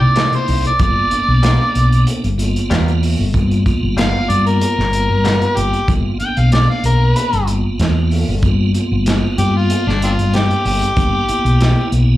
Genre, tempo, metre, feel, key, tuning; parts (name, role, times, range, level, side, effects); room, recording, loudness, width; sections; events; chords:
straight-eighth soul blues; 94 BPM; 4/4; swing 53% on 16ths; A4 = 440 Hz
overdriven harmonica; melody; 0.0-11.9 s; C4 to G5; -18 LUFS; left 1 dB; slapback echo
tonewheel organ; accompaniment; 0.0-12.2 s; Bb3 to F4; -22 LUFS; right 2 dB; slow rotary speaker, chorus vibrato, slapback echo
fingered electric bass; bass; 0.0-12.2 s; G1 to C3; -15 LUFS; equal
direct-recorded clean electric guitar; stabs; 0.2-5.5 s; C3 to A#4; -24 LUFS; left 3 dB; wide subtle chorus, slapback echo
crunchy breakbeat drum kit; drums; 0.2-12.1 s; hi-hat, kick drum, snare drum; -21 LUFS; equal
little or no reverb; live gig heard through the venue's PA, club reverb; -13 LUFS; side -15 dB against mid
0.0-5.9 A section; 5.9-12.2 A section
0.0 C7#9; 0.8 G7#9